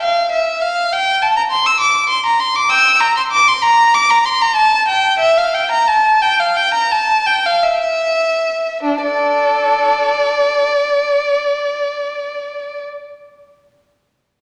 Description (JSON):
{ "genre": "classical, baroque-style suite movement for unaccompanied violin", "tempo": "47-69 BPM (dotted quarters)", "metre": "12/8", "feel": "rubato", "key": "D minor", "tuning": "A4 = 437 Hz", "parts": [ { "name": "warm violin", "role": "solo", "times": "0.0-12.8 s", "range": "D4 to E6", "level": "-15 LUFS", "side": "equal", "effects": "none" } ], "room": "wet scoring stage reverb, RT60 1.5 s", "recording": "none", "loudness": "-14 LUFS", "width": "mono", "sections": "0.0-8.8 A section; 8.8-13.5 B section", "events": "slowing down 2.1-8.8", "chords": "none" }